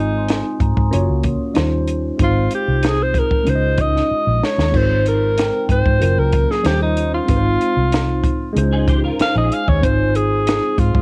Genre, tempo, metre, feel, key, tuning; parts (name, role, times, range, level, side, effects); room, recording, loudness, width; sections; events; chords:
lush 1970s-style soul; 94 BPM; 4/4; straight; Ab major; A4 = 440 Hz
breathy alto saxophone; melody; 0.0-11.0 s; Eb4 to F5; -22 LUFS; equal; cassette tape, analog delay
mellow tine electric piano; accompaniment; 0.0-11.0 s; Gb3 to Eb5; -24 LUFS; equal; phaser, cassette tape, plate reverb
vintage muted fingered electric bass; bass; 0.0-11.0 s; Gb1 to Ab2; -21 LUFS; equal
vibraphone with soft mallets; texture; 0.0-1.6, 5.4-10.1 s; G5 to Eb6; -34 LUFS; equal; cassette tape
compact cocktail drum kit; drums; 0.3-11.0 s; crash cymbal, hi-hat, kick drum, snare drum; -22 LUFS; equal; cassette tape
electric guitar through a small old amp; riff; 8.7-9.8 s; Eb4 to C5; -29 LUFS; equal; ensemble chorus, cassette tape
light reverb; home recording on cassette; -17 LUFS; mono
0.0-11.0 A section
alto saxophone solo 0.0-11.0; drum fill 4.1-4.7
0.0 Ab6; 0.9 Gbmaj7; 1.6 Eb13; 2.2 Ab6; 3.5 Dbadd9; 4.7 Ab6; 6.0 Gbmaj7; 6.7 Eb13; 7.3 Ab6; 8.6 Dbmaj9; 9.8 Ab6